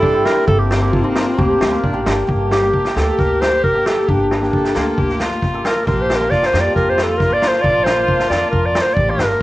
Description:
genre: klezmer.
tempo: 134 BPM.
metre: 4/4.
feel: straight.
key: G minor.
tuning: A4 = 439 Hz.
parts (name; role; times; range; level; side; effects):
mellow clarinet; melody; 0.0-9.4 s; D4 to D5; -17 LUFS; equal; none.
dark violin; second line; 0.0-9.4 s; C4 to A4; -23 LUFS; left 2 dB; none.
cimbalom; accompaniment; 0.0-9.2 s; Bb3 to A4; -21 LUFS; equal; none.
upright bass; bass; 0.0-9.4 s; G1 to G2; -22 LUFS; equal; none.
street-band drum kit; drums; 0.0-9.4 s; kick drum, snare drum; -20 LUFS; equal; none.
room: light reverb.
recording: worn, warbling old tape, cassette tape, warbly pitch drift, nothing above 10.4 kHz.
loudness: -14 LUFS.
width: side -17 dB against mid.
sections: 0.0-2.3 A section; 2.3-9.4 B section.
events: speeding up 0.0-9.4; clarinet solo 2.3-9.4.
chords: 0.5 Gm.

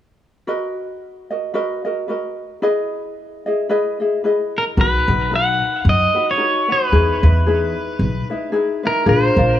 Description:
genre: Hawaiian.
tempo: 112 BPM.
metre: 4/4.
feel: swing 57% on 8ths.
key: B major.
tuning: A4 = 440 Hz.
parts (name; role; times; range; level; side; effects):
ukulele; accompaniment; 0.5-9.6 s; D4 to D#5; -20 LUFS; left 2 dB; none.
pedal steel guitar; melody; 4.6-9.6 s; A#4 to F#5; -18 LUFS; right 1 dB; digital delay.
upright bass; bass; 4.8-9.6 s; A#1 to F#2; -16 LUFS; equal; none.
room: light reverb.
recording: small room ambience.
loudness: -16 LUFS.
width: side -11 dB against mid.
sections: 0.5-4.8 A section; 4.8-9.6 B section.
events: none.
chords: 0.5 Bmaj7; 2.6 Emaj7; 4.8 Bmaj7; 6.9 Emaj7; 9.1 A#7.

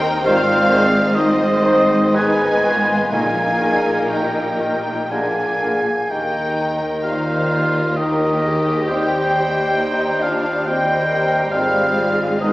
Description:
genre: classical.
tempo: 57-70 BPM.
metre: 3/4.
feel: rubato.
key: Eb major.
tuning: A4 = 441 Hz.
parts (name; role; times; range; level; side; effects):
rich studio violin section; melody; 0.0-12.5 s; C4 to G4; -27 LUFS; left 1 dB; none.
warm studio violin section; second line; 0.0-12.5 s; Eb5 to Ab5; -27 LUFS; left 1 dB; none.
dark studio viola section; accompaniment; 0.0-12.5 s; Eb4 to C5; -26 LUFS; equal; none.
dark French horn section; sustained chords; 0.0-12.5 s; Eb4 to Ab4; -24 LUFS; left 1 dB; none.
warm trombone section; sustained chords; 0.0-12.5 s; D3 to C4; -29 LUFS; equal; none.
rich studio cello section; bass; 0.0-12.5 s; Eb2 to Bb2; -24 LUFS; right 1 dB; none.
warm studio double bass section; bass; 0.0-12.5 s; Ab1 to Eb2; -30 LUFS; equal; none.
warm bassoon; accompaniment; 0.2-12.5 s; D3 to Ab3; -26 LUFS; equal; none.
mellow hollow concert flute; second line; 0.3-12.5 s; Bb4 to F5; -25 LUFS; equal; none.
warm clarinet; second line; 0.3-12.5 s; Bb4 to C5; -27 LUFS; equal; none.
warm oboe; second line; 0.3-12.5 s; Eb5 to Ab5; -21 LUFS; equal; none.
timpani; percussion; 3.1-4.6 s; Bb2; -33 LUFS; equal; none.
room: wet scoring stage reverb, RT60 2.1 s.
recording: heard from further back in the room, small speaker sound.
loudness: -15 LUFS.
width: side -18 dB against mid.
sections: 0.0-12.5 A section.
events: none.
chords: 0.2 Ab; 2.2 Abm; 3.1 Eb/Bb; 5.1 Bb; 6.1 Eb; 8.9 Cm/Eb; 11.5 Abmaj7.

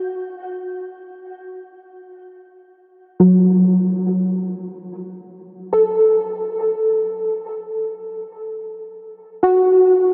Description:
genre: ambient.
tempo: free time.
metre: none.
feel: none.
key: unclear.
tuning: A4 = 440 Hz.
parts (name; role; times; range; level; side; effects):
soft round pluck; solo; 0.0-10.1 s; F#3 to A4; -19 LUFS; equal; ensemble chorus, diffuse ambient delay.
room: wet huge ambient reverb, RT60 7.5 s.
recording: worn, warbling old tape, cassette tape, warbly pitch drift.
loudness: -17 LUFS.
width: mono.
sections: 0.0-10.1 A section.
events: none.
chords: 0.0 N.C.; 4.0 F#m; 9.2 N.C..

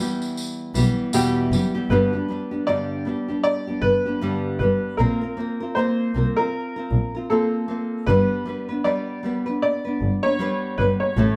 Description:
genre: acoustic pop.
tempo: 78 BPM.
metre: 4/4.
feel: swing 60% on 16ths.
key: unclear.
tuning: A4 = 436 Hz.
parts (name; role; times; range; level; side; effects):
clear upright piano; melody; 0.0-11.4 s; G4 to E5; -26 LUFS; equal; none.
nylon-string guitar; accompaniment; 0.0-11.4 s; E2 to B4; -27 LUFS; equal; none.
tambourine; percussion; 0.2-1.7 s; none; -35 LUFS; equal; none.
dark double bass; bass; 0.7-11.3 s; F#1 to C2; -24 LUFS; equal; none.
room: moderate studio reverb, RT60 0.7 s.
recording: band playing live in one room.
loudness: -23 LUFS.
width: mono.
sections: 0.0-1.9 A section; 1.9-11.4 B section.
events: none.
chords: 0.0 Em; 1.9 G; 5.0 Bbsus2; 8.1 G.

